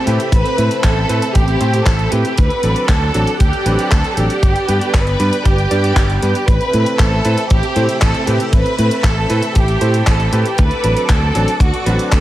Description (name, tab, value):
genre	italo disco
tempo	117 BPM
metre	4/4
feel	straight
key	A minor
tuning	A4 = 440 Hz
part	rich studio violin section	melody	0.0-12.2 s	F#4 to B4	-19 LUFS	right 1 dB	tape echo
part	string machine, full ensemble	sustained chords	0.0-12.2 s	C4 to D6	-23 LUFS	equal	phaser, ensemble chorus
part	clear electric grand piano	stabs	0.0-12.2 s	F#3 to D5	-22 LUFS	right 1 dB	none
part	fingered electric bass	bass	0.1-12.2 s	G1 to A2	-17 LUFS	equal	none
part	house drum kit	drums	0.1-12.2 s	handclaps, hi-hat	-24 LUFS	equal	gated reverb
part	kick drum	drums	0.3-12.2 s	none	-14 LUFS	equal	none
room	light reverb, small room ambience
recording	vinyl crackle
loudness	-12 LUFS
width	side -14 dB against mid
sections	0.0-12.2 A section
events	none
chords	0.0 Amadd9; 2.4 D7; 4.4 G; 6.5 Amadd9; 10.6 D7